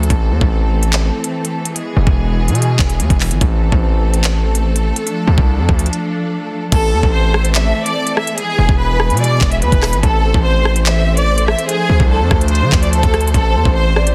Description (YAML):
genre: hip hop, drill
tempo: 145 BPM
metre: 4/4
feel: half-time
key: A harmonic minor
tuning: A4 = 440 Hz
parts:
  - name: rich symphonic string section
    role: sustained chords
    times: 0.0-14.1 s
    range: E3 to C5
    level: -24 LUFS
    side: equal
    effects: none
  - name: distorted 808-style bass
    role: bass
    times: 0.0-14.1 s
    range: E1 to D3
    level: -17 LUFS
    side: equal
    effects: distortion
  - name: drill drum kit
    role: drums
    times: 0.0-14.1 s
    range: crash cymbal, handclaps, hi-hat, kick drum, rim click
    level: -19 LUFS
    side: equal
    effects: none
  - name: bright studio violin section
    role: melody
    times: 6.7-14.1 s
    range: G#4 to E5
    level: -20 LUFS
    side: equal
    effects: none
  - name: warm velvety synth lead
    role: second line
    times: 13.6-14.1 s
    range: C5 to D5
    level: -26 LUFS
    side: equal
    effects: chorus
room: digital ambience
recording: dense, heavily limited modern master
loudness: -15 LUFS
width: mono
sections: 0.0-6.7 A section; 6.7-14.1 B section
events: break 5.9-6.7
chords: 0.1 Am; 1.8 E; 3.4 Am; 5.1 Dm; 6.7 Am; 8.4 E; 10.0 Am; 11.7 Dm; 13.3 Am